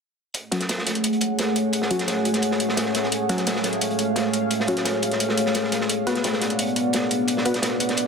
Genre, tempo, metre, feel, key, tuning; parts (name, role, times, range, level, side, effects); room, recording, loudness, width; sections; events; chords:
dark technical drum and bass; 173 BPM; 4/4; straight; F# harmonic minor; A4 = 438 Hz
deep dark ambient pad; sustained chords; 0.8-8.1 s; A3 to F#5; -23 LUFS; equal; chorus, built-in reverb, vintage 12-bit sampler grit
crunchy breakbeat drum kit; drums; 0.3-8.1 s; hi-hat, snare drum; -28 LUFS; right 1 dB; high-pass filter on hats, high-pass filter on snare, high-pass filter on room
electronic hi-hat; drums; 0.3-8.0 s; -27 LUFS; equal
filtered dub chord stab; stabs; 0.5-7.6 s; F#3 to B4; -29 LUFS; left 2 dB; chorus, cassette tape, ping-pong delay
moderate lush hall reverb, RT60 2.1 s; dense, heavily limited modern master; -20 LUFS; side -5 dB against mid
0.3-8.1 A section
filter sweep on synth stab 0.3-8.1
0.3 F#madd9; 5.9 Bm